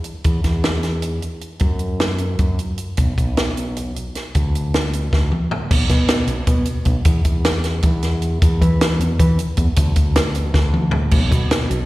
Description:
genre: math rock and midwest emo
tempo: 310 BPM (eighths)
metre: 7/8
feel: straight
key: unclear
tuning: A4 = 437 Hz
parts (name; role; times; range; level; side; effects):
- compact cocktail drum kit; drums; 0.0-11.8 s; crash cymbal, hi-hat, kick drum, snare drum, toms; -18 LUFS; equal; none
- growling fingered electric bass; bass; 0.2-11.9 s; B1 to E3; -19 LUFS; equal; overdrive
room: little or no reverb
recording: live gig heard through the venue's PA, recital hall reverb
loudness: -16 LUFS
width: side -18 dB against mid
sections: 0.0-5.7 A section; 5.7-11.9 B section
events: drum fill 5.1-5.7, 10.5-11.1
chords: none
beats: 0.05 | 0.25 0.44 0.64 0.83 1.03 1.22 1.42 | 1.61 1.81 2.00 2.20 2.40 2.59 2.79 | 2.98 3.18 3.37 3.56 3.76 3.96 4.15 | 4.34 4.54 4.73 4.93 5.12 5.32 5.51 | 5.70 5.90 6.09 6.29 6.48 6.67 6.87 | 7.06 7.25 7.45 7.64 7.83 8.03 8.22 | 8.41 8.61 8.80 8.99 9.19 9.38 9.57 | 9.77 9.96 10.15 10.35 10.54 10.73 10.93 | 11.12 11.31 11.51 11.70

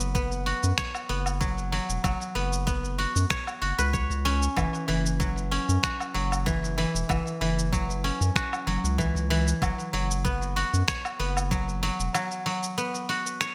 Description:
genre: organic downtempo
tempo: 95 BPM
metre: 4/4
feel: straight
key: unclear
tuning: A4 = 440 Hz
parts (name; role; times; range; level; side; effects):
- guzheng; arpeggios; 0.0-13.5 s; E3 to C#5; -31 LUFS; equal; delay
- round analog bass; bass; 0.0-12.1 s; E1 to F#2; -30 LUFS; equal; sidechain pumping
- dusty soul sampler-style drum kit; drums; 0.0-13.5 s; finger snaps, hi-hat, shaker, woodblock; -34 LUFS; equal; none
- electronic kick drum; drums; 0.1-11.6 s; none; -33 LUFS; equal; none
room: moderate plate reverb, RT60 1.6 s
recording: bright 1980s-style digital production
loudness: -27 LUFS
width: mono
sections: 0.0-13.5 A section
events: none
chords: 0.0 Bsus2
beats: 0.15 0.78 1.41 | 2.04 2.67 3.31 3.94 | 4.57 5.20 5.83 6.46 | 7.09 7.73 8.36 8.99 | 9.62 10.25 10.88 11.52 | 12.15 12.78 13.41

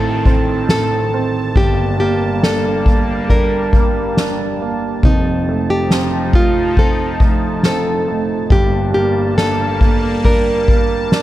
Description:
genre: pop ballad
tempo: 69 BPM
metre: 4/4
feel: straight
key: G minor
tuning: A4 = 440 Hz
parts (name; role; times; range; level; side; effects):
- nylon-string guitar; melody; 0.0-11.2 s; Eb4 to Bb4; -19 LUFS; equal; none
- warm grand piano; accompaniment; 0.0-11.2 s; F1 to D4; -19 LUFS; right 3 dB; none
- sweeping resonant pad; sustained chords; 0.0-11.2 s; Eb3 to A5; -22 LUFS; left 1 dB; chorus
- soft-mallet drum kit; drums; 0.2-11.2 s; kick drum, ride cymbal, snare drum; -16 LUFS; left 1 dB; none
room: small room ambience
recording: dark, warm production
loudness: -13 LUFS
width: side -14 dB against mid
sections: 0.0-11.2 A section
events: none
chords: 0.0 Adim; 1.6 Gmadd9; 5.0 F7; 8.5 Gmadd9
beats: 0.69 | 1.55 2.42 3.29 4.16 | 5.03 5.90 6.77 7.64 | 8.51 9.38 10.25 11.12

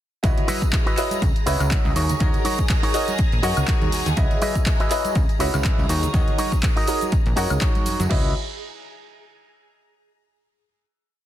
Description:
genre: filtered disco house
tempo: 122 BPM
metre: 4/4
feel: swing 56% on 16ths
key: C# dorian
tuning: A4 = 441 Hz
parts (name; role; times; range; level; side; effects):
- bright baby grand piano; accompaniment; 0.2-8.3 s; D#4 to F#5; -27 LUFS; equal; phaser, sidechain pumping
- phased string machine; sustained chords; 0.2-8.1 s; G#4 to A#5; -31 LUFS; equal; ensemble chorus, phaser, sidechain pumping
- plucky analog bass; bass; 0.2-8.3 s; A#1 to F#2; -24 LUFS; equal; tube saturation, sidechain pumping
- punchy analog drum machine; drums; 0.2-8.2 s; crash cymbal, kick drum; -21 LUFS; equal; none
- punchy analog drum machine; drums; 0.2-8.1 s; handclaps, hi-hat, shaker, woodblock; -29 LUFS; equal; sidechain pumping on hats, sidechain pumping on perc
- tambourine and congas; percussion; 0.2-8.1 s; none; -32 LUFS; right 4 dB; sidechain pumping on perc
- electric guitar with an envelope filter; riff; 0.5-8.3 s; D#4 to D#5; -28 LUFS; right 1 dB; sidechain pumping
room: digital ambience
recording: dense, heavily limited modern master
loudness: -18 LUFS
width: side -12 dB against mid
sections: 0.2-8.1 drop; 8.1-10.1 final chord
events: drop 0.2-8.1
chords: 0.2 C#m11; 2.0 D#m7; 4.2 C#m11; 5.9 D#m7; 8.1 C#m11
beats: | 0.24 0.73 1.22 1.71 | 2.20 2.70 3.19 3.68 | 4.17 4.66 5.16 5.65 | 6.14 6.63 7.12 7.61 | 8.11

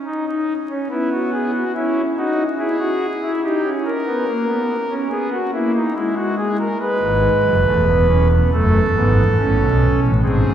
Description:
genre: classical, baroque-style 4-part fugue for pipe organ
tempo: 71 BPM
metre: 4/4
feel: straight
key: C# minor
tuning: A4 = 440 Hz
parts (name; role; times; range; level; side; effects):
- pipe organ, foundations; solo; 0.1-10.5 s; E1 to B4; -16 LUFS; equal; none
room: wet cathedral reverb, RT60 5.0 s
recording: heard from further back in the room, vinyl crackle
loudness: -16 LUFS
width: side -10 dB against mid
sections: 0.0-10.5 A section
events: none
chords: 0.1 G#m; 1.8 C#madd11; 3.4 D#7; 5.1 G#m; 6.8 C#m; 8.5 F#madd11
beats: | 0.06 0.91 1.75 2.59 | 3.43 4.27 5.12 5.97 | 6.82 7.67 8.52 9.38 | 10.24

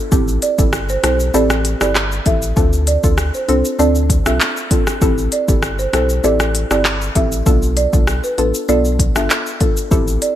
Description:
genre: dancehall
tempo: 98 BPM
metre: 4/4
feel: straight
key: A minor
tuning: A4 = 441 Hz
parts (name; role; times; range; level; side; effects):
- soft round pluck; accompaniment; 0.1-10.3 s; B3 to A4; -20 LUFS; left 2 dB; chorus
- warm sub bass; bass; 0.1-10.2 s; G1 to D2; -19 LUFS; equal; none
- afro-pop drum kit; drums; 0.1-10.4 s; handclaps, hi-hat, kick drum, rim click, shaker; -17 LUFS; equal; gated reverb
- folk marimba with medium mallets; melody; 0.4-10.3 s; B4 to E5; -20 LUFS; right 4 dB; ping-pong delay
room: light reverb, digital ambience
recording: bright 1980s-style digital production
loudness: -13 LUFS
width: side -12 dB against mid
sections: 0.0-10.4 A section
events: none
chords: 0.1 Am7; 2.6 Dm7; 5.0 Am7; 7.5 Bm7b5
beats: | 0.12 0.73 1.34 1.95 | 2.57 3.18 3.79 4.40 | 5.02 5.63 6.24 6.85 | 7.46 8.08 8.69 9.30 | 9.91

